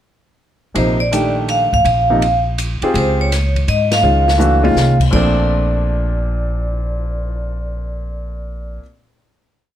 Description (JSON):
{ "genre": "modal jazz", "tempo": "165 BPM", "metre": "3/4", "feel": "swing 65% on 8ths", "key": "Bb major", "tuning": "A4 = 440 Hz", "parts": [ { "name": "warm baby grand piano", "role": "accompaniment", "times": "0.7-8.8 s", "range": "Bb2 to Ab4", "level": "-20 LUFS", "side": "equal", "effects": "none" }, { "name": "vibraphone with medium hard mallets", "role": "melody", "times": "0.8-8.8 s", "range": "C5 to F5", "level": "-19 LUFS", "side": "equal", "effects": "none" }, { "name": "upright bass", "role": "bass", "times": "0.8-8.8 s", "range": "A1 to Ab2", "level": "-18 LUFS", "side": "equal", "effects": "none" }, { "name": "open jazz drum kit", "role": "drums", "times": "0.8-7.2 s", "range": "crash cymbal, cymbal swell, hi-hat, kick drum, ride cymbal, snare drum, toms", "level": "-23 LUFS", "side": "left 2 dB", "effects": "none" } ], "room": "little or no reverb", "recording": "close, detailed microphones", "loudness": "-14 LUFS", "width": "side -11 dB against mid", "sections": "0.8-5.1 A section; 5.1-7.3 final chord", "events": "band accent 3.8; drum fill 4.0-4.8", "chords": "0.8 Bbmaj9; 2.9 Dbmaj9; 5.1 Bbmaj9", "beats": "| 0.76 1.12 1.48 | 1.85 2.21 2.57 | 2.94 3.30 3.67 | 4.03 4.39 4.76 | 5.12 5.48 5.85 | 6.21 6.58 6.94" }